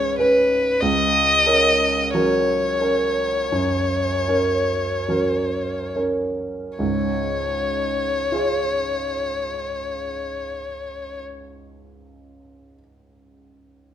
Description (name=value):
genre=classical, romantic duo for violin and grand piano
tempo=33-48 BPM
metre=4/4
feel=rubato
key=Db major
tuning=A4 = 439 Hz
part: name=rich violin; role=melody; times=0.0-11.2 s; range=Cb5 to Eb5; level=-21 LUFS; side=left 2 dB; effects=none
part: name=clear grand piano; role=accompaniment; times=0.0-13.9 s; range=Db2 to Db5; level=-22 LUFS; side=right 2 dB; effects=none
room=moderate recital hall reverb, RT60 1.4 s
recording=minimal, uncompressed stereo recording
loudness=-19 LUFS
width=side -10 dB against mid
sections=0.0-6.8 A section; 6.8-12.9 B section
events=slowing down 0.0-6.8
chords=0.0 Db7(no3); 0.8 Gb/Db; 6.8 Db